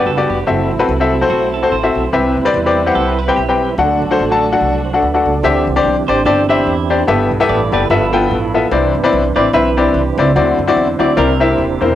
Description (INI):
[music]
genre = uptempo gospel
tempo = 146 BPM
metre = 4/4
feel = swing 57% on 8ths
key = unclear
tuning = A4 = 440 Hz
[part]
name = clean electric guitar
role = second line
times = 0.0-11.9 s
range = E4 to D5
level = -23 LUFS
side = right 7 dB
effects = none
[part]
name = clear grand piano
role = accompaniment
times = 0.0-11.9 s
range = G2 to A5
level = -13 LUFS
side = left 3 dB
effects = none
[part]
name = dark symphonic string section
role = sustained chords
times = 0.0-5.4 s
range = F#3 to B4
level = -26 LUFS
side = right 1 dB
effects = none
[part]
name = tonewheel organ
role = sustained chords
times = 0.0-11.9 s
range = E3 to F#5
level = -21 LUFS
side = right 7 dB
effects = chorus vibrato, stopped rotary speaker
[part]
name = upright bass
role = bass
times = 0.1-11.9 s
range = Eb1 to F#2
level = -20 LUFS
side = right 2 dB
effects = none
[sound]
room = moderate studio reverb, RT60 0.5 s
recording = home recording on cassette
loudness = -12 LUFS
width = side -12 dB against mid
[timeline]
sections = 0.0-5.4 A section; 5.4-11.9 B section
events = none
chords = 0.5 F#m7b5; 2.1 Cmaj7; 3.8 D; 5.4 D9sus4; 7.1 G69; 7.9 G13; 8.7 Cmaj9; 10.4 D9; 11.2 C9